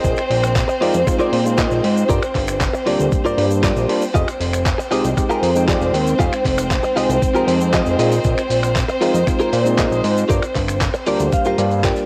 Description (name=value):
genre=nu-disco, nu disco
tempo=117 BPM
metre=4/4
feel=straight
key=F dorian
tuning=A4 = 440 Hz
part: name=rich chamber violin section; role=sustained chords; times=0.0-12.1 s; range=C4 to C5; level=-24 LUFS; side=equal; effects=sidechain pumping, cassette tape
part: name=direct-recorded clean electric guitar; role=riff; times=0.0-12.1 s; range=F4 to G5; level=-24 LUFS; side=equal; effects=analog chorus, cassette tape
part: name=fat analog bass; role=bass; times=0.0-11.9 s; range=F1 to Bb2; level=-22 LUFS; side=equal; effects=none
part: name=dusty soul sampler-style drum kit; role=drums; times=0.0-12.1 s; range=finger snaps, handclaps, hi-hat, shaker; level=-29 LUFS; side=equal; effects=cassette tape
part: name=electronic kick drum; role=drums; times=0.0-11.9 s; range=none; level=-24 LUFS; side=equal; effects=cassette tape
part: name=egg shaker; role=percussion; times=0.0-12.1 s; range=none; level=-40 LUFS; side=equal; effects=none
part: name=bright tine electric piano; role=accompaniment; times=0.8-12.1 s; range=G3 to G5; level=-25 LUFS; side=equal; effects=sidechain pumping, cassette tape, analog delay
room=light reverb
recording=home recording on cassette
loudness=-18 LUFS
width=mono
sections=0.0-12.1 A section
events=clean electric guitar fill 10.8-12.1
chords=0.0 Bb7sus4; 2.1 Gm7; 4.1 Fm9; 8.0 Bb7sus4; 10.3 Gm7